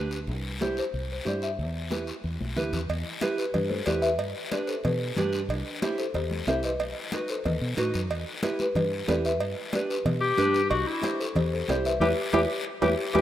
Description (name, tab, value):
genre	latin, cumbia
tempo	184 BPM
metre	4/4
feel	straight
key	E minor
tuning	A4 = 440 Hz
part	folk marimba with medium mallets	melody	0.0-13.2 s	F#4 to E5	-30 LUFS	left 2 dB	tape echo
part	nylon-string guitar	accompaniment	0.0-13.2 s	D4 to C5	-31 LUFS	right 3 dB	none
part	fingered electric bass	bass	0.0-13.2 s	B1 to B2	-31 LUFS	equal	none
part	guiro	percussion	0.1-13.2 s	none	-38 LUFS	left 4 dB	none
part	congas	percussion	0.3-13.2 s	none	-34 LUFS	left 2 dB	none
part	cowbell and timbales	percussion	2.9-13.2 s	none	-33 LUFS	right 6 dB	none
part	bright clarinet	second line	10.2-13.2 s	E4 to G4	-28 LUFS	left 4 dB	none
room	moderate lush hall reverb, RT60 3.2 s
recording	rough home demo mix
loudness	-25 LUFS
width	side -12 dB against mid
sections	0.0-2.9 A section; 2.9-13.2 B section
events	drum fill 2.4-2.9, 12.0-13.2; band accent 12.0-13.2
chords	0.3 C; 1.6 Em; 4.2 G; 5.5 C; 6.8 B; 8.1 Em; 9.4 G; 10.7 C; 12.0 Em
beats	| 0.28 0.60 0.93 1.26 | 1.58 1.91 2.23 2.56 | 2.89 3.21 3.54 3.87 | 4.19 4.52 4.84 5.17 | 5.49 5.82 6.15 6.47 | 6.80 7.12 7.45 7.78 | 8.10 8.43 8.75 9.08 | 9.40 9.73 10.05 10.38 | 10.70 11.03 11.35 11.68 | 12.01 12.33 12.66 12.98